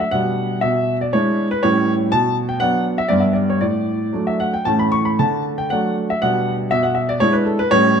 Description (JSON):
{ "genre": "classical-period piano sonatina", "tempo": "120 BPM", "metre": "3/4", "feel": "rubato", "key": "D major", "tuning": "A4 = 438 Hz", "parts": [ { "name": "warm baby grand piano", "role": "solo", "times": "0.0-8.0 s", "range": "G2 to C#6", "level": "-16 LUFS", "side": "equal", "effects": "none" } ], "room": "moderate recital hall reverb, RT60 1.8 s", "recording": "close, detailed microphones", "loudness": "-16 LUFS", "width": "side -7 dB against mid", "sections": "0.0-8.0 A section", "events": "none", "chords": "0.1 G/B; 0.6 E7/B; 1.6 A7; 2.1 Bm; 3.1 G; 3.6 D/A; 4.7 A; 5.2 D; 6.2 G/B; 6.7 E7/B" }